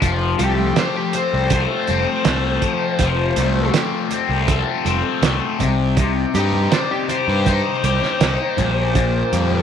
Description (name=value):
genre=psychedelic rock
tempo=81 BPM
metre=4/4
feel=straight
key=unclear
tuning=A4 = 440 Hz
part: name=combo organ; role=sustained chords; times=0.0-9.6 s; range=Eb4 to D6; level=-29 LUFS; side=right 14 dB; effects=wide subtle chorus
part: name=cranked stack guitar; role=riff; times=0.0-9.6 s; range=Bb2 to D5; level=-21 LUFS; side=left 11 dB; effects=overdrive, phaser
part: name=fuzz picked electric bass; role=bass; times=0.0-9.6 s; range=F1 to G2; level=-21 LUFS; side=equal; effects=overdrive
part: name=cloth-damped thuddy drum kit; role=drums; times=0.0-9.5 s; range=hi-hat, kick drum, snare drum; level=-21 LUFS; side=right 4 dB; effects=none
part: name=fuzz lead guitar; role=melody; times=0.4-9.6 s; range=G4 to C5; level=-23 LUFS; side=left 2 dB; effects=distortion, slapback echo
part: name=congas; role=percussion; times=0.4-9.6 s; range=none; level=-30 LUFS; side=right 11 dB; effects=none
room=small room reverb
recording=1960s-style stereo with parts hard left and right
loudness=-16 LUFS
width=side -8 dB against mid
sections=0.0-9.6 A section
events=lead electric guitar solo 0.0-9.6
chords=0.0 Fadd9; 5.6 Cmadd9; 8.6 Bb6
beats=| 0.02 0.76 1.51 2.25 | 3.00 3.74 4.49 5.23 | 5.98 6.72 7.47 8.21 | 8.96